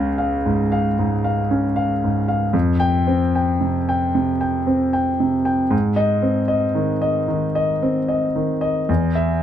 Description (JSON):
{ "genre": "neoclassical minimalist piano", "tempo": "76 BPM", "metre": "4/4", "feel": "rubato", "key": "F minor", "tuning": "A4 = 440 Hz", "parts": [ { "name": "warm concert grand piano", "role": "solo", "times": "0.0-9.4 s", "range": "Db2 to G5", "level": "-17 LUFS", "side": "equal", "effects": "none" } ], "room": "moderate small room reverb, RT60 0.5 s", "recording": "none", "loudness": "-17 LUFS", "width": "side -10 dB against mid", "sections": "0.0-9.4 A section", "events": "none", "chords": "0.0 Db; 2.5 Fsus2; 5.7 Ab; 8.9 E5" }